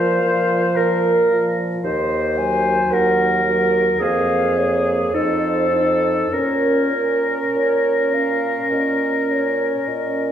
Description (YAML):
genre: classical, slow romantic movement for wind quintet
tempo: 49-56 BPM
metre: 4/4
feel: rubato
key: Bb minor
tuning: A4 = 439 Hz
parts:
  - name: concert flute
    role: melody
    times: 0.0-10.3 s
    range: C5 to Ab5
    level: -24 LUFS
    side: left 5 dB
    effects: none
  - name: clear oboe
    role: second line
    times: 0.0-10.3 s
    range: Ab4 to C5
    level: -23 LUFS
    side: left 3 dB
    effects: none
  - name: warm French horn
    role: accompaniment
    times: 0.0-10.3 s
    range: F3 to Eb4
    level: -24 LUFS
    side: equal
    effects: none
  - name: warm clarinet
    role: accompaniment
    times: 0.0-10.3 s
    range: Ab4 to C5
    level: -22 LUFS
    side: right 4 dB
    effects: none
  - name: mellow bassoon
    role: bass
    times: 0.0-10.3 s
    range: Eb2 to Bb2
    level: -22 LUFS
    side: right 2 dB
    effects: none
room: wet recital hall reverb, RT60 1.5 s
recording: heard from further back in the room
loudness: -16 LUFS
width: side -9 dB against mid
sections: 0.0-10.3 A section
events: none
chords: 0.0 Bb5; 1.8 Cdim/Eb; 4.0 Bbm/F; 5.1 F7; 6.3 Bbm